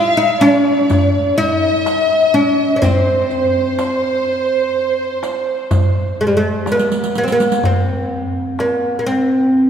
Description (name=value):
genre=Arabic maqam ensemble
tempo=124 BPM (eighths)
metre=10/8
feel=straight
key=C maqam huzam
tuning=A4 = 440 Hz
part: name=oud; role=melody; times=0.0-9.7 s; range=G3+40c to F4-40c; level=-16 LUFS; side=equal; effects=none
part: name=dark studio violin section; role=second line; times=0.0-6.7 s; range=C5 to F5-40c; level=-17 LUFS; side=equal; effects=none
part: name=darbuka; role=percussion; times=0.4-9.2 s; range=none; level=-21 LUFS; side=equal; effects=none
part: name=riq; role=percussion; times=0.4-7.6 s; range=none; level=-27 LUFS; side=right 3 dB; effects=none
room=wet church reverb, RT60 3.4 s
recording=recorded in a church or concert hall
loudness=-13 LUFS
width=side -8 dB against mid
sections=0.0-7.6 A section; 7.6-9.7 B section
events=drum fill 6.7-7.6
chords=none